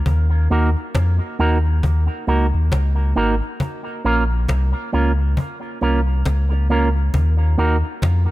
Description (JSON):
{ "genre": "dub reggae", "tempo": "68 BPM", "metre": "4/4", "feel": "swing 60% on 16ths", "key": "unclear", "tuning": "A4 = 441 Hz", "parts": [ { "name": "warm sub bass", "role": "bass", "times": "0.0-8.3 s", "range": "Ab1 to F2", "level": "-17 LUFS", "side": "equal", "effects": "none" }, { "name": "cajon", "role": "drums", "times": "0.1-8.3 s", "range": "none", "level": "-24 LUFS", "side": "left 1 dB", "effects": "none" }, { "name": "electric guitar with an envelope filter", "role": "accompaniment", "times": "0.5-7.8 s", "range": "Bb3 to Bb4", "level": "-22 LUFS", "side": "right 3 dB", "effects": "dub echo" } ], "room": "small room ambience", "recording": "echo-heavy mix", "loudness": "-16 LUFS", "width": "side -17 dB against mid", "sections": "0.0-8.3 A section", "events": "none", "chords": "0.1 Ebm; 3.6 Bbm; 7.1 Ebm" }